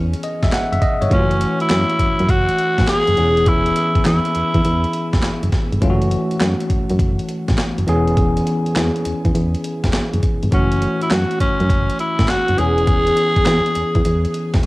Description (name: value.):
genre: R&B, new jack swing.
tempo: 102 BPM.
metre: 4/4.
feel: swing 67% on 16ths.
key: unclear.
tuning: A4 = 440 Hz.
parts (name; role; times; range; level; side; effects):
bell-like tine electric piano; accompaniment; 0.0-14.7 s; E3 to F#5; -21 LUFS; left 1 dB; medium stereo tremolo, cassette tape, shimmer reverb.
solid FM bass; bass; 0.0-14.6 s; E1 to F#2; -20 LUFS; equal; none.
breakbeat sampler-style drum kit; drums; 0.1-14.7 s; handclaps, hi-hat, kick drum, snare drum, toms; -20 LUFS; equal; cassette tape.
raspy tenor saxophone; melody; 1.1-5.5, 10.5-14.6 s; C#4 to G#4; -19 LUFS; equal; shimmer reverb.
room: moderate booth ambience, RT60 0.2 s.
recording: home recording on cassette.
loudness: -15 LUFS.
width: side -20 dB against mid.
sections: 0.0-14.7 A section.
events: none.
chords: 0.0 E6; 1.1 F#m7; 3.2 E6; 5.8 F#m7; 7.9 E6; 10.5 F#m7; 12.6 E6.